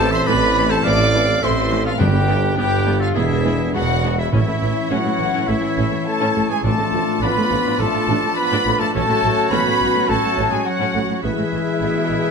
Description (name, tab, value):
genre	cinematic, heroic adventure film score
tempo	104 BPM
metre	4/4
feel	straight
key	A major from 4.3 s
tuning	A4 = 438 Hz
part	rich symphonic violin section	melody	0.0-12.3 s	E5 to D6	-28 LUFS	left 3 dB	none
part	clear oboe	second line	0.0-12.3 s	G#4 to F5	-29 LUFS	right 2 dB	none
part	mellow small flute group	second line	0.0-12.3 s	E5 to D6	-25 LUFS	left 2 dB	none
part	rich symphonic violin section	second line	0.0-12.3 s	C4 to B5	-27 LUFS	left 4 dB	none
part	rich symphonic viola section	accompaniment	0.0-12.3 s	E3 to G#4	-26 LUFS	right 1 dB	none
part	dark trombone section	sustained chords	0.0-12.3 s	D3 to D4	-28 LUFS	right 2 dB	none
part	mellow French horn section	sustained chords	0.0-12.3 s	E3 to G#4	-25 LUFS	left 7 dB	none
part	clear trumpet	stabs	0.0-12.3 s	E4 to D5	-25 LUFS	right 2 dB	none
part	clear symphonic double bass section	bass	0.0-12.2 s	E1 to A1	-25 LUFS	right 4 dB	none
part	rich symphonic cello section	bass	0.0-12.3 s	E2 to B2	-27 LUFS	right 3 dB	none
part	warm tuba	bass	0.0-12.2 s	E1 to A1	-28 LUFS	right 4 dB	none
part	timpani	percussion	2.0-7.5 s	G2 to A2	-23 LUFS	equal	none
part	warm clarinet	second line	4.3-12.3 s	E4 to G#4	-31 LUFS	left 2 dB	none
room	moderate scoring stage reverb, RT60 2.2 s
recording	none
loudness	-16 LUFS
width	side -5 dB against mid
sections	0.0-4.3 A section; 4.3-12.3 B section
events	none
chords	0.0 Am; 2.0 G; 3.2 E7; 4.3 A; 6.6 Dm/A; 8.9 F#m/A; 11.2 E/A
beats	0.28 0.85 1.43 | 2.01 2.59 3.17 3.75 | 4.33 4.91 5.49 6.07 | 6.64 7.22 7.79 8.37 | 8.94 9.52 10.09 10.66 | 11.24 11.81